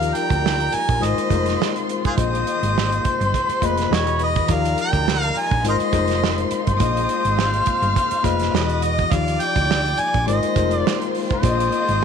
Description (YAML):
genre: lush 1970s-style soul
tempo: 104 BPM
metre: 4/4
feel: swing 54% on 16ths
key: Eb major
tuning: A4 = 438 Hz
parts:
  - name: warm harmonica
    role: melody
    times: 0.0-12.0 s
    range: F4 to Ab5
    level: -22 LUFS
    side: left 1 dB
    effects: none
  - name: warm chamber violin section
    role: second line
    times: 0.0-12.0 s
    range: Bb4 to F6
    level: -28 LUFS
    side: right 1 dB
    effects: none
  - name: tine electric piano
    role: accompaniment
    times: 0.0-12.0 s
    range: E3 to Eb5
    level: -25 LUFS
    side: left 12 dB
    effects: fast stereo tremolo
  - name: warm studio string section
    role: sustained chords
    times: 0.0-12.0 s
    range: Eb3 to D#5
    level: -33 LUFS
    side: equal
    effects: none
  - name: hollow-body short-scale fingered electric bass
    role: bass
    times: 0.0-12.0 s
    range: E1 to Eb2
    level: -23 LUFS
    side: right 1 dB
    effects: none
  - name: warm soul drum kit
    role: drums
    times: 0.0-12.0 s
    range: hi-hat, kick drum, snare drum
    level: -24 LUFS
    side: right 6 dB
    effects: none
room: light reverb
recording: 1960s-style stereo with parts hard left and right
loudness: -17 LUFS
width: side -7 dB against mid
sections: 0.0-12.0 A section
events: none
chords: 0.0 Ebmaj9; 1.0 Ab69; 2.2 Bb9sus4; 3.9 Emaj9; 4.5 Ebmaj9; 5.6 Ab69; 8.5 Emaj9; 9.1 Ebmaj9; 10.3 Ab69; 11.4 Bb9sus4